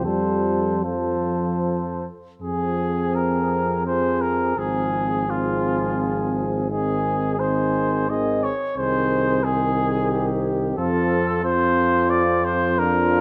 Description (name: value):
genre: classical, hymn-like piece for brass band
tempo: 75-91 BPM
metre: 3/4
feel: rubato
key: F minor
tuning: A4 = 440 Hz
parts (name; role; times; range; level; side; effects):
- mellow cornet; melody; 0.0-13.2 s; F4 to Eb5; -26 LUFS; equal; none
- mellow flugelhorn; second line; 0.0-13.2 s; F4 to A4; -30 LUFS; equal; none
- mellow euphonium; accompaniment; 0.0-13.2 s; F3 to D4; -29 LUFS; equal; none
- warm tuba; bass; 0.0-13.2 s; Ab1 to F2; -28 LUFS; equal; none
- clear trombone; accompaniment; 0.1-13.2 s; Eb3 to F3; -32 LUFS; equal; none
room: light reverb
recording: close, detailed microphones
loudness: -22 LUFS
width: mono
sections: 0.0-2.4 A section; 2.4-13.2 B section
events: none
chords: 0.1 F; 2.4 Fm; 4.6 Fm/Ab; 6.7 Ab; 8.8 Ab/C; 10.8 F